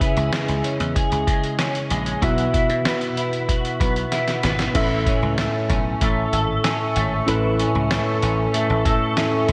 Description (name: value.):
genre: 1980s-style pop.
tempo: 95 BPM.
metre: 4/4.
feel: straight.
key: unclear.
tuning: A4 = 440 Hz.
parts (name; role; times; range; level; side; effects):
tine electric piano; accompaniment; 0.0-9.5 s; A2 to E5; -26 LUFS; equal; overdrive.
twelve-string electric guitar; riff; 0.0-9.5 s; E3 to A4; -27 LUFS; equal; ensemble chorus, delay, slapback echo.
lo-fi sampler-style drum kit; drums; 0.0-9.5 s; crash cymbal, hi-hat, kick drum, snare drum; -26 LUFS; equal; none.
dry thumbed slap bass; bass; 0.2-9.5 s; G#1 to C#3; -28 LUFS; equal; none.
granular cloud pad; sustained chords; 5.8-9.5 s; A4 to C#6; -29 LUFS; equal; built-in reverb.
room: wet lush hall reverb, RT60 2.6 s.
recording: big arena sound.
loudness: -21 LUFS.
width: mono.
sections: 0.0-4.8 A section; 4.8-9.5 B section.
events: drum fill 4.1-4.8.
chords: 0.0 C#m; 2.2 Bsus4; 4.8 A.